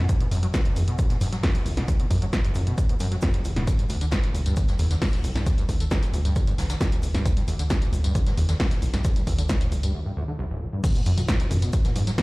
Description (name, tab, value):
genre	driving peak-time techno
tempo	134 BPM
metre	4/4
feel	straight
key	unclear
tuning	A4 = 439 Hz
part	overdriven acid bass	riff	0.0-12.2 s	D1 to F#3	-29 LUFS	equal	distortion, ensemble chorus, sidechain pumping, digital delay
part	tight sequencer bass	bass	0.0-12.1 s	D1 to G#2	-24 LUFS	equal	sidechain pumping
part	electronic kick drum	drums	0.1-12.2 s	none	-24 LUFS	equal	none
part	jazz brush drum kit	drums	0.1-12.2 s	hi-hat, shaker, snare drum	-41 LUFS	left 1 dB	high-pass filter on hats, high-pass filter on snare, high-pass filter on perc, high-pass filter on room
part	punchy analog drum machine	drums	0.1-12.2 s	crash cymbal, hi-hat, snare drum, tambourine, toms	-31 LUFS	equal	none
room	light reverb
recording	played on a big sound system in a bare room, stone room reverb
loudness	-21 LUFS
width	side -23 dB against mid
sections	0.0-10.8 A section; 10.8-12.2 B section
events	break 9.9-10.8; drop 10.8-12.2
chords	0.0 F#5; 3.7 D7sus4; 10.8 N.C.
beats	| 0.09 0.54 0.99 1.44 | 1.88 2.33 2.78 3.23 | 3.67 4.12 4.57 5.02 | 5.46 5.91 6.36 6.81 | 7.26 7.70 8.15 8.60 | 9.05 9.49 9.94 10.39 | 10.84 11.29 11.73 12.18